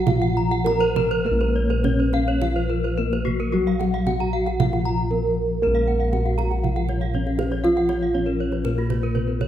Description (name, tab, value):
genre	Balinese gamelan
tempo	101-119 BPM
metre	4/4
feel	straight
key	Bb pelog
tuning	A4 = 439 Hz
part	gamelan-type bronze metallophone	melody	0.0-9.5 s	Gb3 to Bb4	-25 LUFS	right 1 dB	none
part	gamelan-type bronze metallophone	accompaniment	0.0-9.5 s	F3 to Bb3	-30 LUFS	left 6 dB	none
part	gamelan-type bronze metallophone	arpeggios	0.0-9.5 s	Gb4 to Bb5	-32 LUFS	right 6 dB	none
part	gamelan-type bossed gongs	bass	0.0-9.5 s	Bb1 to Bb4	-23 LUFS	equal	none
part	gamelan-type bronze metallophone	arpeggios	0.1-9.4 s	Gb4 to Bb5	-30 LUFS	left 6 dB	none
part	kendang	percussion	0.1-9.5 s	none	-29 LUFS	right 5 dB	none
room	moderate scoring stage reverb, RT60 2.0 s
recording	none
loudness	-19 LUFS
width	side -11 dB against mid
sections	0.0-5.6 A section; 5.6-9.5 B section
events	none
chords	none